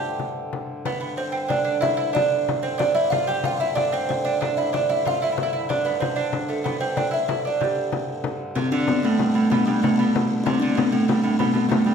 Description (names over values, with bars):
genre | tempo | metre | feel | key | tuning
medieval dance | 125 BPM (dotted quarters) | 6/8 | straight | G mixolydian | A4 = 440 Hz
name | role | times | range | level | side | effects
buzzing kalimba | melody | 0.0-11.9 s | G3 to G5 | -22 LUFS | equal | none
lute | second line | 0.0-11.9 s | G2 to G4 | -27 LUFS | right 5 dB | none
pedal harmonium | drone | 0.0-11.9 s | G2 to D3 | -33 LUFS | left 2 dB | none
frame drum | percussion | 0.0-11.9 s | none | -30 LUFS | left 6 dB | none
room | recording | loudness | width
wet recital hall reverb, RT60 1.3 s | minimal, uncompressed stereo recording | -20 LUFS | side -6 dB against mid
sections
0.8-8.6 A section; 8.6-11.9 B section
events
speeding up 0.0-11.9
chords
none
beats
0.36 | 0.85 1.34 | 1.82 2.31 | 2.79 3.28 | 3.76 4.25 | 4.73 5.21 | 5.69 6.17 | 6.65 7.13 | 7.61 8.08 | 8.56 9.04 | 9.51 9.98 | 10.46 10.93 | 11.40 11.87